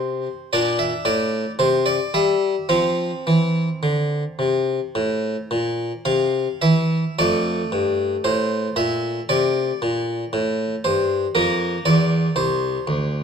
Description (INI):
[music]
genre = classical, baroque-style suite movement for harpsichord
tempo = 52-59 BPM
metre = 4/4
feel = rubato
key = F major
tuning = A4 = 439 Hz
[part]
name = harpsichord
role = solo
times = 0.0-13.2 s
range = C2 to F5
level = -19 LUFS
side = equal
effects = none
[sound]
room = moderate stone room reverb, RT60 1.0 s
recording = worn, warbling old tape, cassette tape, warbly pitch drift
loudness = -18 LUFS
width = side -7 dB against mid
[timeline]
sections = 0.0-7.2 A section; 7.2-13.2 B section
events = none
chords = 0.0 N.C.; 0.5 Bbmaj7#11; 1.6 C; 2.7 F5; 7.2 F (rootless); 11.3 C7